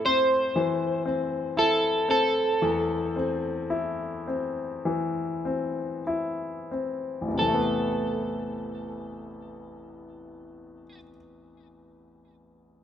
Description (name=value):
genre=pop ballad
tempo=44-60 BPM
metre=4/4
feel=straight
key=A minor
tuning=A4 = 440 Hz
part: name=electric guitar at the edge of break-up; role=melody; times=0.0-11.0 s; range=A4 to C5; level=-25 LUFS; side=right 1 dB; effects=analog chorus
part: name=clear grand piano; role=accompaniment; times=0.0-12.8 s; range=A1 to E4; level=-28 LUFS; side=left 3 dB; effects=none
room=light reverb, studio reverb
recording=rough home demo mix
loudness=-25 LUFS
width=side -9 dB against mid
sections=0.0-7.4 A section; 7.4-12.8 B section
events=slowing down 0.0-7.4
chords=0.0 Am; 7.4 Amadd9